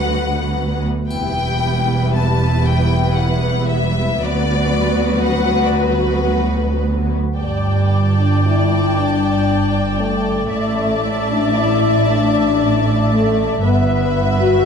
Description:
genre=cinematic, epic orchestral film score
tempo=115 BPM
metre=3/4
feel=straight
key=E minor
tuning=A4 = 440 Hz
part: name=bright symphonic violin section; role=melody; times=0.0-14.7 s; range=B4 to A5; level=-26 LUFS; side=left 5 dB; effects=none
part: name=warm symphonic violin section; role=second line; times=0.0-14.7 s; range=E4 to G5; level=-23 LUFS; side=left 3 dB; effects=none
part: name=rich symphonic viola section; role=accompaniment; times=0.0-14.7 s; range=F#3 to D5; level=-23 LUFS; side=left 1 dB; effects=none
part: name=warm symphonic cello section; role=bass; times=0.0-14.7 s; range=D2 to A2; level=-21 LUFS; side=right 3 dB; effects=none
part: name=warm symphonic double bass section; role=bass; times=0.0-14.7 s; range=E1 to D2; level=-20 LUFS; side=right 2 dB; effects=none
part: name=triangle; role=percussion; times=1.1-2.1 s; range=none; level=-39 LUFS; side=left 1 dB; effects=none
part: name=mellow French horn section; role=sustained chords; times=7.4-14.7 s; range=G3 to F#4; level=-19 LUFS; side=left 5 dB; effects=none
room=moderate recital hall reverb, RT60 1.4 s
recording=dark, warm production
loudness=-14 LUFS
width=side -6 dB against mid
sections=0.0-7.4 A section; 7.4-14.7 B section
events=none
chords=0.0 Bm/D; 1.1 Em; 4.2 Bm/D; 7.4 Gsus2; 10.5 Asus4; 13.6 Em/G

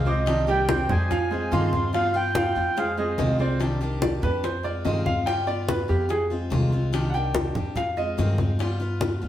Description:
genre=latin, Cuban son and guajira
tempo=144 BPM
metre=4/4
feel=straight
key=C harmonic minor from 3.6 s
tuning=A4 = 440 Hz
part: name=mellow accordion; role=melody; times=0.0-3.4 s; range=Eb5 to C6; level=-26 LUFS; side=right 1 dB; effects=none
part: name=picked steel-string acoustic guitar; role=accompaniment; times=0.0-9.3 s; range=C3 to G4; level=-30 LUFS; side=left 2 dB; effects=none
part: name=upright bass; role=bass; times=0.0-9.3 s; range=C2 to G2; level=-26 LUFS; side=equal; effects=none
part: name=clear concert grand piano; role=arpeggios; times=0.1-8.4 s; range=F3 to D6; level=-27 LUFS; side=right 2 dB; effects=none
part: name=bongos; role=percussion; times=0.1-9.2 s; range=none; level=-32 LUFS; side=left 4 dB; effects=none
part: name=congas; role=percussion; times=0.1-9.3 s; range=none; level=-31 LUFS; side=equal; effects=none
room=wet stone room reverb, RT60 1.2 s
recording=band playing live in one room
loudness=-22 LUFS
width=side -12 dB against mid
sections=0.0-3.6 A section; 3.6-9.3 B section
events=grand piano solo 3.6-9.3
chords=0.3 Cmadd9; 1.1 Fm7; 1.9 G7; 2.8 Fm7; 3.6 Cmadd9; 4.4 Fm7; 5.3 G7; 6.1 Fm7; 6.9 Cmadd9; 7.8 Fm7; 8.6 G7

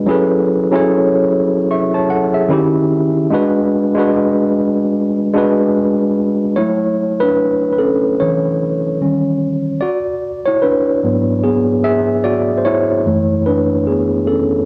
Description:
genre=R&B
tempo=74 BPM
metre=4/4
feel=swing 59% on 16ths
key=F# minor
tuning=A4 = 436 Hz
part: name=tine electric piano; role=solo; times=0.0-14.7 s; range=F#2 to C#6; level=-15 LUFS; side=equal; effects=overdrive, cassette tape
room=light reverb, digital ambience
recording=home recording on cassette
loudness=-15 LUFS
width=mono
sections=0.0-6.6 A section; 6.6-14.7 B section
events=tine electric piano solo 6.6-14.7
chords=0.1 F#m11; 2.5 D#7b9; 3.3 G#m7b5; 6.6 F#m7; 9.0 D#7b9; 9.8 G#m7b5; 13.1 F#m7

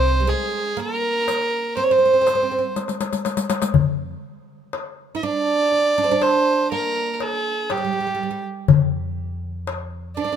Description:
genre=Arabic maqam ensemble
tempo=121 BPM (eighths)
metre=10/8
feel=straight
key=unclear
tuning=A4 = 440 Hz
part: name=warm violin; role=melody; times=0.0-10.4 s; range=G4 to Eb5+45c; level=-21 LUFS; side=right 2 dB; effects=none
part: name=oud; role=second line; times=0.0-10.4 s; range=G3 to E4-50c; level=-23 LUFS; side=right 4 dB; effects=none
part: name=upright bass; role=bass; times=0.0-10.2 s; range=C2 to F2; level=-25 LUFS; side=equal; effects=none
part: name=riq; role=percussion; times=0.3-3.7 s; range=none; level=-26 LUFS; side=left 5 dB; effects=none
part: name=darbuka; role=percussion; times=0.8-9.9 s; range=none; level=-21 LUFS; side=left 7 dB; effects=none
room=light reverb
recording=minimal, uncompressed stereo recording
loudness=-18 LUFS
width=side -8 dB against mid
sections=0.0-3.7 A section; 3.7-10.4 B section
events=drum fill 2.8-3.7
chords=none

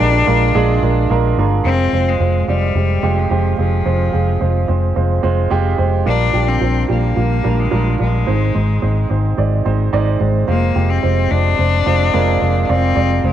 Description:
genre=piano-driven pop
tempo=109 BPM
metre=4/4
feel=straight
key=unclear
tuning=A4 = 444 Hz
part: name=bright cello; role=melody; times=0.0-13.3 s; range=F3 to D4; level=-20 LUFS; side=left 8 dB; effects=cassette tape
part: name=warm grand piano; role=accompaniment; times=0.0-13.3 s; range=Ab2 to D5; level=-18 LUFS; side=right 7 dB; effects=cassette tape
part: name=vintage muted fingered electric bass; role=bass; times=0.0-13.3 s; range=F1 to Bb1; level=-16 LUFS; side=left 1 dB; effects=none
room=light reverb, studio reverb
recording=home recording on cassette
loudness=-13 LUFS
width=side -11 dB against mid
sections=0.0-1.7 A section; 1.7-13.3 B section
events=none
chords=0.0 Bb7; 1.7 Fm; 6.1 Bb6; 8.3 Ab; 10.5 Fm

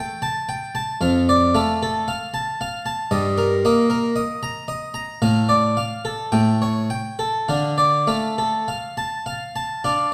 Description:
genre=classical, baroque-style suite movement for harpsichord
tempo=51-58 BPM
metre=4/4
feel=rubato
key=D minor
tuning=A4 = 440 Hz
part: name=harpsichord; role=solo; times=0.0-10.1 s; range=F2 to Bb5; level=-21 LUFS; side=equal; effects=none
room=wet recital hall reverb, RT60 1.4 s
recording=dark, warm production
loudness=-21 LUFS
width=mono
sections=0.0-10.1 A section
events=none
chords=0.0 A7(no3); 1.0 Dm/F; 3.1 Eb/G; 5.2 Dm/A; 6.3 A7; 7.5 Dm

